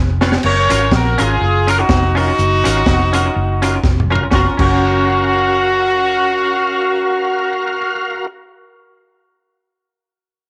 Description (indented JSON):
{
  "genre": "ska",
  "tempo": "123 BPM",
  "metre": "4/4",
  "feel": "swing 56% on 8ths",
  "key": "F# major",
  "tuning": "A4 = 443 Hz",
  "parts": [
    { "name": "vintage muted fingered electric bass", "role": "bass", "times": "0.0-8.3 s", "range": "E#1 to A#1", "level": "-20 LUFS", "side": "equal", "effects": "none" },
    { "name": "semi-hollow electric guitar", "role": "accompaniment", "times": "0.2-8.3 s", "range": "C#4 to B4", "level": "-24 LUFS", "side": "equal", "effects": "tremolo, slapback echo" },
    { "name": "overdriven tonewheel organ", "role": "stabs", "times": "0.2-8.3 s", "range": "F#4 to E#5", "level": "-26 LUFS", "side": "equal", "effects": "chorus vibrato, slow rotary speaker" },
    { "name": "crunchy breakbeat drum kit", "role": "drums", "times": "0.2-4.7 s", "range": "crash cymbal, hi-hat, kick drum, snare drum, toms", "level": "-20 LUFS", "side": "equal", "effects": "slapback echo" },
    { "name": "clear horn section", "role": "melody", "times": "0.4-8.3 s", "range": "D#4 to C#5", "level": "-18 LUFS", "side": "equal", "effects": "none" }
  ],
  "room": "light reverb, studio reverb",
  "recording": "none",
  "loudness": "-15 LUFS",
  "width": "mono",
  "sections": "0.4-4.3 A section; 4.3-8.2 B section",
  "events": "drum fill 0.0-0.4, 3.8-4.3",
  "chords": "0.4 F#maj7"
}